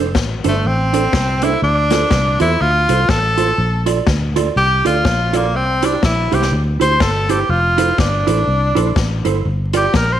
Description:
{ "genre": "ska", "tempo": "123 BPM", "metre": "4/4", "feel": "swing 60% on 8ths", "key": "F major", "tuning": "A4 = 440 Hz", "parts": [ { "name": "mellow electric guitar", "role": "accompaniment", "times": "0.0-9.9 s", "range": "D4 to D5", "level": "-20 LUFS", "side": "right 8 dB", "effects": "slapback echo" }, { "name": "fingered electric bass", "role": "bass", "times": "0.0-10.2 s", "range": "F1 to E2", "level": "-18 LUFS", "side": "equal", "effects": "none" }, { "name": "swinging big-band drum kit", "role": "drums", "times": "0.1-10.1 s", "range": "hi-hat, kick drum, snare drum", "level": "-21 LUFS", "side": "left 2 dB", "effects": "none" }, { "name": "clear tenor saxophone", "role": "melody", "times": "0.5-10.2 s", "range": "A3 to C5", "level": "-17 LUFS", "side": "equal", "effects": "slapback echo" } ], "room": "light reverb, small room ambience", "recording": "1960s-style stereo, vinyl crackle", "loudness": "-13 LUFS", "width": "side -11 dB against mid", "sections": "0.0-10.2 A section", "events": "tenor saxophone solo 0.0-10.2", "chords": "0.0 F6 (rootless); 1.6 Dm7; 3.6 Bbmaj7; 5.5 C; 7.5 Fmaj7; 9.4 Gm7", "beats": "0.15 0.64 1.13 | 1.62 2.11 2.60 3.09 | 3.58 4.07 4.56 5.05 | 5.54 6.03 6.51 7.00 | 7.49 7.98 8.47 8.96 | 9.45 9.94" }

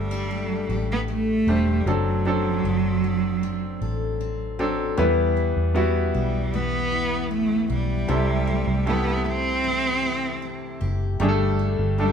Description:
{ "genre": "pop", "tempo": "77 BPM", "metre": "4/4", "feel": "straight", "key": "unclear", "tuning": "A4 = 440 Hz", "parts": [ { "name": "rich cello", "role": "melody", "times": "0.0-12.1 s", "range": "F#3 to C4", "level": "-25 LUFS", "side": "right 3 dB", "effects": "none" }, { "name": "clear concert grand piano", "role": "accompaniment", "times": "0.0-12.1 s", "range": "G2 to C5", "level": "-26 LUFS", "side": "left 2 dB", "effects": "none" }, { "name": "picked steel-string acoustic guitar", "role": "arpeggios", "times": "0.0-12.1 s", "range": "E2 to A4", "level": "-32 LUFS", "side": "left 6 dB", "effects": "none" }, { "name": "vintage muted fingered electric bass", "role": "bass", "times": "0.0-12.1 s", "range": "E1 to E2", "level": "-26 LUFS", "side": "equal", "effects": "none" } ], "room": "moderate large studio reverb, RT60 1.1 s", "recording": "band playing live in one room", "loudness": "-21 LUFS", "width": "side -7 dB against mid", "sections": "0.0-5.0 A section; 5.0-12.1 B section", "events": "none", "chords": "0.0 Gsus2; 1.9 D7/F#; 5.0 Em; 8.1 C6; 11.2 Gsus2", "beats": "0.30 1.08 | 1.86 2.64 3.42 4.20 | 4.98 5.76 6.54 7.32 | 8.10 8.87 9.65 10.43 | 11.21 11.99" }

